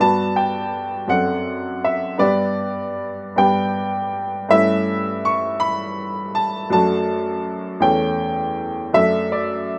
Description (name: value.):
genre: classical, romantic character piece for solo piano.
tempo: 54 BPM (dotted quarters).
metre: 6/8.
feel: rubato.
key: D major.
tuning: A4 = 440 Hz.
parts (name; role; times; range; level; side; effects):
clear upright piano; solo; 0.0-9.8 s; E2 to C#6; -20 LUFS; equal; none.
room: moderate studio reverb, RT60 0.9 s.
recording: none.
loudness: -20 LUFS.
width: mono.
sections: 0.0-9.8 A section.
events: none.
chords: 0.0 Gmaj7; 1.1 D7/F#; 2.2 G; 4.5 A7/G; 6.7 D/F#; 7.8 A7/E; 9.0 D/F#.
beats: | 0.02 1.11 | 2.22 3.40 | 4.54 5.63 | 6.73 7.82 | 8.96.